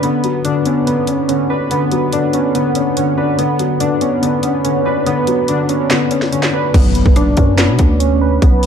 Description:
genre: hip hop, trap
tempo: 143 BPM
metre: 4/4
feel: half-time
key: B minor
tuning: A4 = 440 Hz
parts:
  - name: felt-muted upright piano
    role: accompaniment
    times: 0.0-6.8 s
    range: D3 to D4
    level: -18 LUFS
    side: left 5 dB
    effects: low-pass filter
  - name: deep dark ambient pad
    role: sustained chords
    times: 0.0-6.7 s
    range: D3 to F#5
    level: -22 LUFS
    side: equal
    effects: chorus, built-in reverb
  - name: warbly lo-fi synth keys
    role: arpeggios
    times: 0.0-8.7 s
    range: B3 to B4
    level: -17 LUFS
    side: right 2 dB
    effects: chorus, low-pass filter, ping-pong delay
  - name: trap drum kit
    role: drums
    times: 0.0-8.7 s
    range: crash cymbal, handclaps, hi-hat, kick drum, rim click, snare drum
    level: -16 LUFS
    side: equal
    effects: overdrive
  - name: growling 808-style bass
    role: bass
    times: 6.7-8.7 s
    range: B1 to B2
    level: -14 LUFS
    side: equal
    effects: none
  - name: impact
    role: sound effects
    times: 6.7-8.4 s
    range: none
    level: -21 LUFS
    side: equal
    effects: none
room: light reverb, digital ambience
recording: dark, warm production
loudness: -12 LUFS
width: side -8 dB against mid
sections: 0.0-6.7 A section; 6.7-8.7 B section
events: kick muted 5.9-6.7; impact 6.7-8.4; filter sweep 6.7-8.7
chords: 0.0 Bmadd9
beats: | 0.03 0.45 0.87 1.29 | 1.71 2.13 2.55 2.97 | 3.39 3.81 4.23 4.64 | 5.07 5.48 5.90 6.32 | 6.74 7.16 7.58 8.00 | 8.42

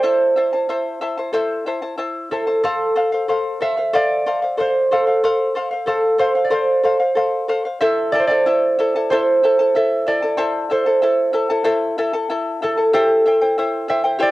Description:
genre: andean folk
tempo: 93 BPM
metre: 4/4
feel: straight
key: unclear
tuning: A4 = 444 Hz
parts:
  - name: concert harp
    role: melody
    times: 0.0-14.3 s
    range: A4 to E5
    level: -17 LUFS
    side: right 1 dB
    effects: cassette tape
  - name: charango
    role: accompaniment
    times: 0.0-14.3 s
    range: E4 to A5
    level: -20 LUFS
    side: left 2 dB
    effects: none
room: light reverb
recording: home recording on cassette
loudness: -16 LUFS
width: side -17 dB against mid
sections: 0.0-2.6 A section; 2.6-14.3 B section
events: none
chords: 0.0 Am; 2.6 F; 7.8 Am; 12.9 C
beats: | 0.04 0.69 1.34 1.99 | 2.64 3.29 3.94 4.59 | 5.23 5.88 6.52 7.17 | 7.81 8.45 9.10 9.74 | 10.38 11.02 11.66 12.30 | 12.94 13.57 14.21

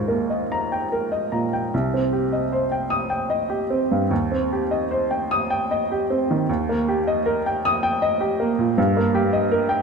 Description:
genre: classical, romantic character piece for solo piano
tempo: 77 BPM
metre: 3/4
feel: uneven beats, rubato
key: C minor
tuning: A4 = 440 Hz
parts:
  - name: clear upright piano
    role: solo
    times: 0.0-9.8 s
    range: C2 to Eb6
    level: -20 LUFS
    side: right 1 dB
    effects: none
room: wet recital hall reverb, RT60 1.5 s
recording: none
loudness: -20 LUFS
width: side -5 dB against mid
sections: 0.0-1.7 A section; 1.7-9.8 B section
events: none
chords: 0.0 Eb; 1.7 Cm; 4.1 Cm/Eb; 6.5 Eb; 8.8 Eb/G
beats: 0.06 0.90 | 1.72 2.52 3.30 | 4.10 4.90 5.70 | 6.48 7.26 8.02 | 8.77 9.51

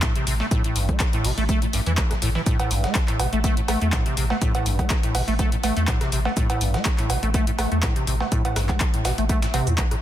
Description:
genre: acid house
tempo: 123 BPM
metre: 4/4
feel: swing 54% on 16ths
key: A minor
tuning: A4 = 440 Hz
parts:
  - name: acid bass, square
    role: riff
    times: 0.0-9.9 s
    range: A1 to C4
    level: -25 LUFS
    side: equal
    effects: tube saturation, ensemble chorus, sidechain pumping, ping-pong delay
  - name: warm sub bass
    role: bass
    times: 0.0-9.8 s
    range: A1 to E2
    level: -24 LUFS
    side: equal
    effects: tube saturation, sidechain pumping
  - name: dusty soul sampler-style drum kit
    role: drums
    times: 0.0-9.9 s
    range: hi-hat, shaker, snare drum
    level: -36 LUFS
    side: right 2 dB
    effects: high-pass filter on snare, high-pass filter on perc, high-pass filter on hats, high-pass filter on room
  - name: electronic kick drum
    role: drums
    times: 0.0-9.9 s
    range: none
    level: -23 LUFS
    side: equal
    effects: overdrive
  - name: punchy analog drum machine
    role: drums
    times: 0.0-10.0 s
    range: cowbell, handclaps, hi-hat, rim click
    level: -27 LUFS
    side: right 1 dB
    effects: overdrive
room: light reverb, digital ambience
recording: dense, heavily limited modern master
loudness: -20 LUFS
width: side -12 dB against mid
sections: 0.0-10.0 A section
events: none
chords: 0.0 Am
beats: 0.03 | 0.51 1.00 1.49 1.98 | 2.46 2.95 3.44 3.93 | 4.42 4.90 5.39 5.88 | 6.37 6.86 7.34 7.83 | 8.32 8.81 9.29 9.78

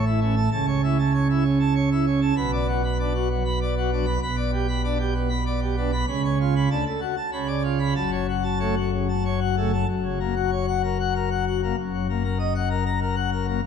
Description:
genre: classical, organ toccata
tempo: 97 BPM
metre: 3/4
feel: straight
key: F# minor, F# major from 9.9 s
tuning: A4 = 440 Hz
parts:
  - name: pipe organ, plenum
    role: solo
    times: 0.0-13.7 s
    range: E#1 to B5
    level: -21 LUFS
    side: equal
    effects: none
room: wet recital hall reverb, RT60 1.8 s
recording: none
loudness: -21 LUFS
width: side -7 dB against mid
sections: 0.0-9.9 A section; 9.9-13.7 B section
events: none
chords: 0.0 A; 0.5 A/C#; 2.4 Bm; 4.2 G/B; 6.1 C#7; 6.7 D; 7.3 C#7b9; 8.0 F#m; 9.9 F#; 11.8 D#m/F#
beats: | 0.53 1.14 1.76 | 2.37 2.99 3.60 | 4.22 4.84 5.46 | 6.08 6.71 7.33 | 7.97 8.61 9.26 | 9.89 10.52 11.15 | 11.78 12.39 13.02 | 13.63

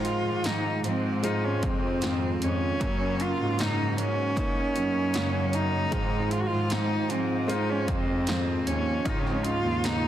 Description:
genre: pop ballad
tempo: 77 BPM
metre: 4/4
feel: straight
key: unclear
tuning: A4 = 444 Hz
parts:
  - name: clear grand piano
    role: accompaniment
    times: 0.0-10.1 s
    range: Ab2 to C5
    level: -32 LUFS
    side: equal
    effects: none
  - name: picked steel-string acoustic guitar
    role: arpeggios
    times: 0.0-10.1 s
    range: Gb2 to Gb4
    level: -34 LUFS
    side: right 6 dB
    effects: none
  - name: bright chamber cello section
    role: bass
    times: 0.0-10.1 s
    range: Db2 to Ab2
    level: -30 LUFS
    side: equal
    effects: none
  - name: punchy analog drum machine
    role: drums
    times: 0.0-10.0 s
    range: hi-hat, kick drum, snare drum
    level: -33 LUFS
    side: equal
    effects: overdrive
  - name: warm cello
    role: melody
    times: 0.1-10.1 s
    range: C4 to Gb4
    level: -29 LUFS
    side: equal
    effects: ping-pong delay
room: light reverb, small room ambience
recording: dense, heavily limited modern master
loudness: -24 LUFS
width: side -11 dB against mid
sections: 0.0-10.1 A section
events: none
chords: 0.0 Ab6; 2.8 Gb; 5.9 Ab6; 9.1 Dbadd9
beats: 0.45 1.24 2.02 | 2.81 3.59 4.37 5.14 | 5.92 6.71 7.49 8.27 | 9.06 9.85

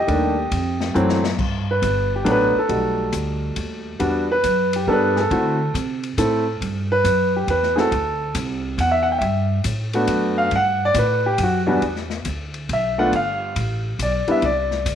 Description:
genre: jazz piano trio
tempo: 138 BPM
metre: 3/4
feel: swing 67% on 8ths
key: G major, E minor from 11.8 s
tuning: A4 = 440 Hz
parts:
  - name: warm baby grand piano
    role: melody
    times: 0.0-14.9 s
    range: E2 to G5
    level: -19 LUFS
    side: equal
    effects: none
  - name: upright bass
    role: bass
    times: 0.0-14.9 s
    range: G1 to D3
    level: -24 LUFS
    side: equal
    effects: none
  - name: open jazz drum kit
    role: drums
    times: 0.1-14.9 s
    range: crash cymbal, hi-hat, kick drum, ride cymbal, snare drum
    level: -31 LUFS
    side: left 4 dB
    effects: none
room: moderate plate reverb, RT60 1.1 s, studio ambience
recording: 1960s-style stereo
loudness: -18 LUFS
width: side -9 dB against mid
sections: 0.0-1.4 A section; 1.4-11.8 B section; 11.8-14.9 B section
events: drum fill 1.0-1.4; grand piano solo 1.4-14.9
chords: 0.1 D#maj9#11; 1.0 F#m7b5; 1.4 Gmaj9; 2.7 B7b13; 4.0 Em9; 5.3 D7sus2; 6.6 Gmaj7; 7.9 Dsus2; 9.2 Gmaj9; 11.8 E5; 13.1 G7; 14.4 Csus2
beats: | 0.09 0.52 0.95 | 1.39 1.82 2.26 | 2.69 3.13 3.56 | 4.00 4.43 4.87 | 5.30 5.74 6.17 | 6.61 7.04 7.48 | 7.91 8.35 8.78 | 9.21 9.65 10.08 | 10.52 10.95 11.39 | 11.82 12.26 12.69 | 13.12 13.56 13.99 | 14.43 14.86

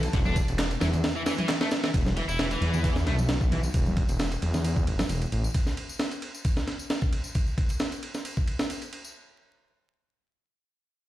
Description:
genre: breakbeat, breaks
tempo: 133 BPM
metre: 4/4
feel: straight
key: E minor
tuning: A4 = 440 Hz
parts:
  - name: lush unison pad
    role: sustained chords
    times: 0.0-1.9 s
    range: E3 to B4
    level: -44 LUFS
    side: equal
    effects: none
  - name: detuned saw bass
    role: bass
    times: 0.0-5.5 s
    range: E1 to E2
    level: -27 LUFS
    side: equal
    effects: none
  - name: breakbeat sampler-style drum kit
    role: drums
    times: 0.0-9.0 s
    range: kick drum, ride cymbal, snare drum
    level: -27 LUFS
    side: equal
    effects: none
  - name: electronic tambourine and handclaps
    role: drums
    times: 0.0-9.1 s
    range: none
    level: -41 LUFS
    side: left 2 dB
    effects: none
  - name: distorted electric guitar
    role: riff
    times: 0.1-3.6 s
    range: D3 to E4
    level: -32 LUFS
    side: left 1 dB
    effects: overdrive, low-pass filter, dub echo
  - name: congas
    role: percussion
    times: 0.3-5.1 s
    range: none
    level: -33 LUFS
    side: right 1 dB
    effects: none
room: light reverb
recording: played on a big sound system in a bare room, stone room reverb, vinyl crackle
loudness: -25 LUFS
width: side -14 dB against mid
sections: 0.0-1.9 A section; 1.9-9.2 B section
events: filter sweep on distorted electric guitar 1.9-3.7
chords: 0.0 Em; 1.9 N.C.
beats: | 0.13 0.58 1.03 1.49 | 1.94 2.39 2.84 3.29 | 3.74 4.19 4.64 5.09 | 5.55 6.00 6.45 6.90 | 7.35 7.80 8.25 8.70

